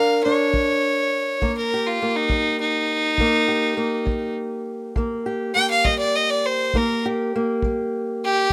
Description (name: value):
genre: acoustic country blues, solo or duo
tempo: 68 BPM (dotted quarters)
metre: 12/8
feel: straight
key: unclear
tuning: A4 = 438 Hz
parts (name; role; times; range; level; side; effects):
- clear fiddle; melody; 0.0-8.5 s; Eb4 to G5; -23 LUFS; equal; none
- fingerpicked old ladder-braced acoustic guitar; accompaniment; 0.0-8.5 s; Bb2 to Bb4; -26 LUFS; equal; none
- kick drum; drums; 0.5-8.5 s; none; -28 LUFS; equal; none
room: little or no reverb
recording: rough home demo mix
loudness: -22 LUFS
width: mono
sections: 0.0-8.5 A section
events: none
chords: 0.0 Bb; 1.4 Eb